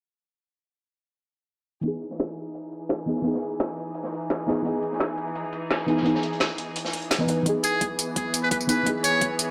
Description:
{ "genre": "liquid drum and bass", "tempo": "171 BPM", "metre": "4/4", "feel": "straight", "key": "E major", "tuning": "A4 = 440 Hz", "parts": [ { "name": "deep mellow chord stab", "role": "accompaniment", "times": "1.8-9.5 s", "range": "E3 to B4", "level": "-29 LUFS", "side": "equal", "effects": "chorus, delay" }, { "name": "bright studio string section", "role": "sustained chords", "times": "1.8-9.5 s", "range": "E3 to G#4", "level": "-34 LUFS", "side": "equal", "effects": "sidechain pumping, low-pass filter" }, { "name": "crunchy breakbeat drum kit", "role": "drums", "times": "1.8-7.4 s", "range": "hi-hat, snare drum", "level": "-37 LUFS", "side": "equal", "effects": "high-pass filter on hats, high-pass filter on snare, high-pass filter on room" }, { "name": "garage drum kit", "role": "drums", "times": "2.2-9.5 s", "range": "hi-hat, snare drum, tambourine", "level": "-29 LUFS", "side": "equal", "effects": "overdrive" }, { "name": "electronic kick drum", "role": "drums", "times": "7.5-9.3 s", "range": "none", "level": "-34 LUFS", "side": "equal", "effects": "overdrive, high-pass filter on kick" }, { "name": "trumpet with metal mute", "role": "melody", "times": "7.6-9.3 s", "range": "G#4 to C#5", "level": "-27 LUFS", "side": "equal", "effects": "delay" } ], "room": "moderate lush hall reverb, RT60 2.1 s", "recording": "low-pass filter", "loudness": "-26 LUFS", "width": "mono", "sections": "1.8-7.5 A section; 7.5-9.5 B section", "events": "filter sweep 1.8-7.5; build-up 7.5-9.5; filter sweep on string section 7.5-9.5", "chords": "1.8 Emaj7" }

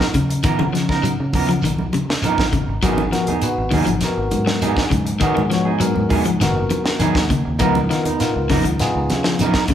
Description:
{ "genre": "afrobeat", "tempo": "100 BPM", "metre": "4/4", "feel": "straight", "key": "G# dorian", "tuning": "A4 = 440 Hz", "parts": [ { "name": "electric guitar through a small old amp", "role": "stabs", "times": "0.0-9.7 s", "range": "E#3 to A#4", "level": "-23 LUFS", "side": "right 4 dB", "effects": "none" }, { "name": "fingered electric bass", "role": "bass", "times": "0.0-9.7 s", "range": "F#1 to C#3", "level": "-24 LUFS", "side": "equal", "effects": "none" }, { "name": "tight funk drum kit", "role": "drums", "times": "0.0-9.7 s", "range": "hi-hat, kick drum, snare drum", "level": "-23 LUFS", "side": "equal", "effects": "none" }, { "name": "electric guitar at the edge of break-up", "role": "arpeggios", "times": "0.1-9.7 s", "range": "C#3 to F#3", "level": "-23 LUFS", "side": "left 4 dB", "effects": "none" }, { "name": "congas", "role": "percussion", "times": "0.1-9.7 s", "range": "none", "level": "-26 LUFS", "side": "equal", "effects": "none" }, { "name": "shekere", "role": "percussion", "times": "0.1-9.7 s", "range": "none", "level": "-28 LUFS", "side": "right 1 dB", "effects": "none" }, { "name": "barky tine electric piano", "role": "accompaniment", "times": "2.8-9.5 s", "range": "B3 to C#5", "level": "-24 LUFS", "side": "left 2 dB", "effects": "overdrive" } ], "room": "wet large studio reverb, RT60 1.3 s", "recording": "band playing live in one room", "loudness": "-16 LUFS", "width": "side -10 dB against mid", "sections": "0.0-9.7 A section", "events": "none", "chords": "0.0 C#13; 2.8 G#m7; 7.6 C#13" }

